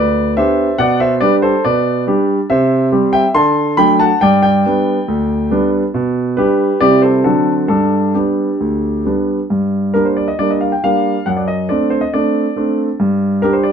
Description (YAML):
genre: classical-period piano sonatina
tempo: 138 BPM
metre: 4/4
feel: rubato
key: G major, G minor from 9.5 s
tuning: A4 = 442 Hz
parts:
  - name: clear concert grand piano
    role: solo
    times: 0.0-13.7 s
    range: D2 to C6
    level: -12 LUFS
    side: equal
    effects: none
room: moderate studio reverb, RT60 0.8 s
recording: dark, warm production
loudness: -12 LUFS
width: side -7 dB against mid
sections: 0.0-9.5 A section; 9.5-13.7 B section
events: none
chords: 0.0 G; 0.8 G/B; 2.5 C; 3.3 D7; 4.2 G; 5.9 G/B; 6.8 C; 7.3 D7; 7.7 G; 9.5 Gm; 11.3 D7/F#; 13.0 G5